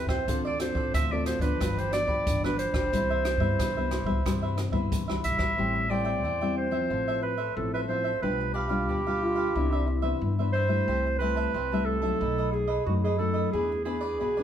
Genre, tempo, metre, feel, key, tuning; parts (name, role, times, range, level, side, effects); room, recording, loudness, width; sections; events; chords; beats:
samba and choro; 90 BPM; 4/4; straight; C major, A minor from 5.6 s; A4 = 440 Hz
warm clarinet; melody; 0.0-14.4 s; F#4 to E5; -29 LUFS; right 2 dB
cavaquinho; accompaniment; 0.0-14.4 s; D4 to A5; -35 LUFS; right 2 dB
nylon-string guitar; accompaniment; 0.0-14.4 s; F#2 to A4; -32 LUFS; left 3 dB
upright bass; bass; 0.0-14.4 s; G1 to G2; -31 LUFS; equal
open jazz drum kit; drums; 0.1-5.6 s; hi-hat, kick drum, rim click; -31 LUFS; equal
mellow trombone; second line; 9.2-10.4 s; D4 to F4; -31 LUFS; left 1 dB
moderate large studio reverb, RT60 1.0 s; heard from further back in the room; -25 LUFS; side -9 dB against mid
0.0-5.6 A section; 5.6-14.4 B section
0.3 Dm7; 1.6 G7; 2.9 Cmaj7; 5.6 Am7; 6.9 Fmaj7/A; 8.2 G7/B; 9.6 Cmaj9; 10.9 Am7/C; 12.2 B7; 13.5 E7
| 0.28 0.94 1.61 2.27 | 2.93 3.59 4.26 4.92 | 5.58 6.24 6.91 7.57 | 8.23 8.89 9.55 10.22 | 10.88 11.54 12.21 12.87 | 13.54 14.20